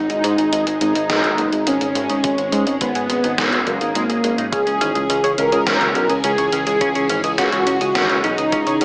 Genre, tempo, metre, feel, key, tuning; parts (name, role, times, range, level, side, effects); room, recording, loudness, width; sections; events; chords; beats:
synthwave; 105 BPM; 4/4; straight; G# minor; A4 = 440 Hz
soft supersaw; melody; 0.0-8.8 s; A#3 to A#4; -22 LUFS; equal; cassette tape, tape echo
string machine, full ensemble; sustained chords; 0.0-8.8 s; E3 to G#4; -30 LUFS; equal; phaser, ensemble chorus, sidechain pumping
clean electric guitar; riff; 0.0-8.8 s; G#3 to C#5; -28 LUFS; equal; analog chorus, low-pass filter, tape echo
fat analog bass; bass; 0.0-8.8 s; F#1 to G#2; -26 LUFS; equal; sidechain pumping
gated 80s digital drum machine; drums; 0.1-8.8 s; hi-hat, snare drum; -25 LUFS; equal; gated reverb, gated reverb snare, overdrive
electronic kick drum; drums; 2.2-8.6 s; -33 LUFS; equal; overdrive
moderate plate reverb, RT60 2.3 s; small speaker sound; -18 LUFS; mono
0.0-8.8 A section
filter sweep on clean electric guitar 0.0-8.8
0.0 G#5; 4.5 C#m
0.53 1.10 1.67 | 2.24 2.81 3.38 3.95 | 4.53 5.10 5.67 6.24 | 6.81 7.38 7.95 8.53